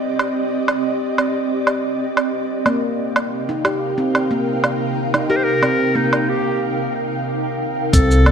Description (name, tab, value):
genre	organic downtempo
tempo	91 BPM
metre	4/4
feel	straight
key	unclear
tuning	A4 = 440 Hz
part	ethereal airy pad	sustained chords	0.0-8.3 s	C3 to G5	-21 LUFS	right 1 dB	ensemble chorus, built-in reverb, tremolo, sidechain pumping
part	electronic woodblock, hi-hat and shaker	drums	0.2-8.3 s	none	-21 LUFS	right 2 dB	none
part	handpan	arpeggios	2.7-8.3 s	Bb3 to G4	-21 LUFS	equal	tape echo
part	clear clarinet	melody	5.3-8.3 s	Eb4 to C5	-21 LUFS	left 1 dB	tape echo
part	smooth synth bass	bass	7.9-8.3 s	C2	-13 LUFS	equal	sidechain pumping
part	electronic kick drum	drums	7.9-8.1 s	none	-16 LUFS	equal	none
room	wet echo chamber reverb, RT60 2.1 s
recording	none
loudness	-17 LUFS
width	side -7 dB against mid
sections	0.0-7.9 A section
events	break 6.6-7.9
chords	0.0 Cm; 2.7 Ebadd9/C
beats	| 0.02 0.68 1.34 2.00 | 2.66 3.32 3.98 4.64 | 5.30 5.96 6.62 7.27 | 7.93